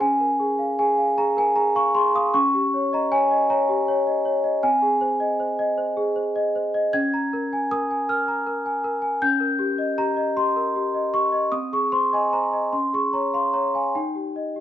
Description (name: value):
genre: classical, lullaby for celesta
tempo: 52 BPM (dotted quarters)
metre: 6/8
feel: rubato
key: Ab major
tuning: A4 = 439 Hz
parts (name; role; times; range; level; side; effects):
- large celesta; solo; 0.0-14.6 s; C4 to Ab6; -20 LUFS; equal; none
room: moderate stone room reverb, RT60 0.9 s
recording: band playing live in one room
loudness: -20 LUFS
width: side -11 dB against mid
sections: 0.0-14.6 A section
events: none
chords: 0.0 Bbm7/Db; 2.3 Eb7/Db; 4.6 Ab/C; 6.9 Bbm7/Db; 9.2 Eb7/Db; 11.5 Ab/C; 12.7 Dbmaj7; 13.9 Eb